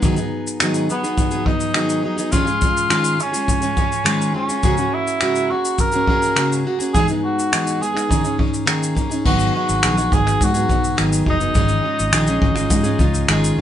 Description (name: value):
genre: acoustic pop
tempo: 104 BPM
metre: 4/4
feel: straight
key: G# minor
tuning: A4 = 440 Hz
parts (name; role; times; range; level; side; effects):
- picked plugged-in steel-string acoustic guitar; accompaniment; 0.0-13.6 s; G#2 to G#4; -21 LUFS; equal; none
- jazz brush drum kit; drums; 0.0-13.6 s; crash cymbal, finger snaps, kick drum, shaker; -20 LUFS; equal; none
- mellow cor anglais; melody; 0.9-13.5 s; B3 to A#4; -21 LUFS; equal; none
- vintage muted fingered electric bass; bass; 9.3-13.6 s; F#1 to G#2; -21 LUFS; equal; none
room: moderate studio reverb, RT60 0.6 s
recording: band playing live in one room, nothing above 10.6 kHz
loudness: -16 LUFS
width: side -10 dB against mid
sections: 0.0-9.3 A section; 9.3-13.6 B section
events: none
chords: 0.0 G#m7; 2.3 C#add9/G#; 4.6 F#/G#; 6.9 Emaj7/G#; 8.1 D#7sus4; 9.3 G#m7; 11.6 C#add9/G#